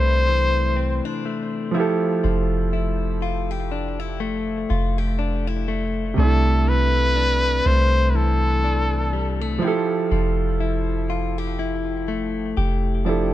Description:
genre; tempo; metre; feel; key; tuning
R&B; 61 BPM; 4/4; swing 58% on 16ths; unclear; A4 = 439 Hz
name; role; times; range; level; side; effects
bright trumpet; melody; 0.0-9.6 s; A4 to C5; -23 LUFS; left 1 dB; dub echo
warm baby grand piano; accompaniment; 0.0-13.3 s; C3 to D5; -26 LUFS; right 5 dB; none
direct-recorded clean electric guitar; arpeggios; 0.0-13.3 s; C3 to G4; -26 LUFS; left 6 dB; dub echo
soft 808-style bass; bass; 0.0-13.3 s; F1 to C2; -22 LUFS; equal; none
room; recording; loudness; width
little or no reverb; echo-heavy mix; -19 LUFS; side -13 dB against mid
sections
0.0-13.3 A section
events
none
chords
0.0 C69; 1.7 Fmaj9; 6.2 C69; 9.6 Fmaj9

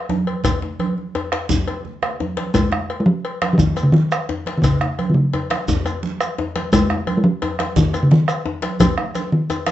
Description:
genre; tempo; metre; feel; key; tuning
west african traditional, West African drum ensemble; 115 BPM (dotted quarters); 12/8; straight; Db major pentatonic; A4 = 441 Hz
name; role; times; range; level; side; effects
congas; percussion; 0.1-9.7 s; none; -26 LUFS; right 4 dB; none
djembe; percussion; 0.1-9.7 s; none; -25 LUFS; left 4 dB; none
cowbell; percussion; 0.3-9.7 s; none; -26 LUFS; left 4 dB; none
bombo; percussion; 0.4-9.7 s; none; -23 LUFS; right 1 dB; none
shekere; percussion; 0.4-9.7 s; none; -30 LUFS; right 2 dB; none
talking drum; melody; 2.5-9.7 s; Db3 to Ab3; -16 LUFS; equal; none
room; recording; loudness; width
moderate studio reverb, RT60 0.7 s; nothing above 7.9 kHz; -17 LUFS; side -13 dB against mid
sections
0.0-2.5 A section; 2.5-9.7 B section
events
drum fill 1.8-2.5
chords
none

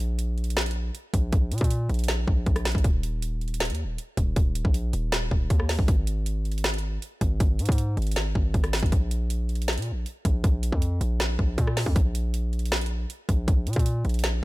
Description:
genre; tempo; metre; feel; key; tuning
hip hop, trap; 158 BPM; 4/4; half-time; unclear; A4 = 442 Hz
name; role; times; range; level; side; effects
distorted 808-style bass; bass; 0.0-14.4 s; Eb1 to Bb2; -26 LUFS; equal; distortion
trap drum kit; drums; 0.0-14.3 s; hi-hat, kick drum, rim click, snare drum; -25 LUFS; equal; none
room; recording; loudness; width
little or no reverb; none; -23 LUFS; side -20 dB against mid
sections
0.0-8.9 A section; 8.9-14.4 A section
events
none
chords
none

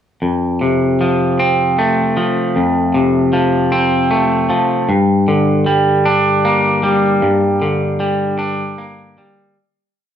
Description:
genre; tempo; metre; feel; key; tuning
post-rock; 51 BPM (dotted quarters); 6/8; straight; G minor; A4 = 444 Hz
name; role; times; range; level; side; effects
electric guitar at the edge of break-up; solo; 0.2-9.6 s; F2 to D4; -12 LUFS; equal; none
room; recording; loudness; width
moderate large studio reverb, RT60 1.0 s; band playing live in one room; -12 LUFS; side -9 dB against mid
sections
0.2-9.6 A section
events
fade-out 7.2-9.6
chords
0.2 F; 4.9 Gm

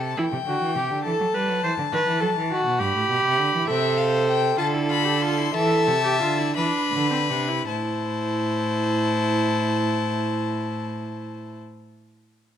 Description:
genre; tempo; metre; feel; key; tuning
classical, baroque-style fugue for string quartet; 51-69 BPM (dotted quarters); 6/8; straight; A minor; A4 = 438 Hz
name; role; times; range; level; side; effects
warm violin; melody; 0.0-11.6 s; E5 to C6; -27 LUFS; left 10 dB; none
rich violin; second line; 0.0-0.2, 3.7-11.6 s; A4 to E5; -29 LUFS; left 4 dB; none
rich cello; bass; 0.0-11.6 s; G2 to G3; -27 LUFS; right 3 dB; none
warm viola; accompaniment; 0.2-11.6 s; C4 to C5; -25 LUFS; right 2 dB; none
room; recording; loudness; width
light reverb; none; -20 LUFS; side -9 dB against mid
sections
0.0-7.7 A section; 7.7-12.3 B section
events
slowing down 2.8-7.7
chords
0.2 Em; 1.1 F#m; 1.9 B7; 2.8 Em/G (rootless); 3.7 Am/C; 4.6 Dm; 5.5 E7sus4; 6.6 E5; 7.7 Am

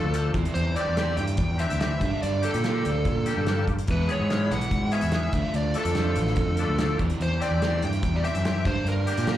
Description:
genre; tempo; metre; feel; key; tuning
indie rock; 144 BPM; 4/4; straight; C mixolydian; A4 = 440 Hz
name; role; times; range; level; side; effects
smooth overdriven lead guitar; melody; 0.0-9.4 s; A4 to G5; -30 LUFS; equal; slapback echo
overdriven semi-hollow guitar; riff; 0.0-9.4 s; G2 to F4; -32 LUFS; right 5 dB; wide subtle chorus, slapback echo
twangy electric guitar; riff; 0.0-9.4 s; E3 to A4; -32 LUFS; left 5 dB; ensemble chorus, slapback echo
growling fingered electric bass; bass; 0.0-9.4 s; A1 to Bb2; -26 LUFS; equal; overdrive
loose indie drum kit; drums; 0.1-9.4 s; hi-hat, kick drum, snare drum; -30 LUFS; equal; none
room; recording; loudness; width
little or no reverb; live gig heard through the venue's PA, club reverb; -22 LUFS; side -12 dB against mid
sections
0.0-9.4 A section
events
none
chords
0.4 Cadd9/E; 2.0 Gm; 3.9 E6; 5.3 Dm; 7.0 Cadd9/E; 8.7 Gm

